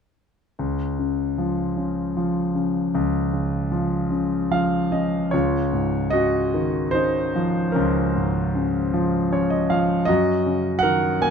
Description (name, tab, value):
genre	classical, lyrical solo piano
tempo	51 BPM (dotted quarters)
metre	6/8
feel	uneven beats, rubato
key	Db major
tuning	A4 = 440 Hz
part	clear concert grand piano	solo	0.6-11.3 s	Db2 to Ab5	-20 LUFS	equal	none
room	light reverb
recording	dark, warm production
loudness	-20 LUFS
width	side -6 dB against mid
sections	0.6-5.3 A section; 5.3-11.3 B section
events	grand piano fill 4.1-5.3, 8.9-10.1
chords	0.6 Db; 5.3 Dbadd9; 10.1 Gb6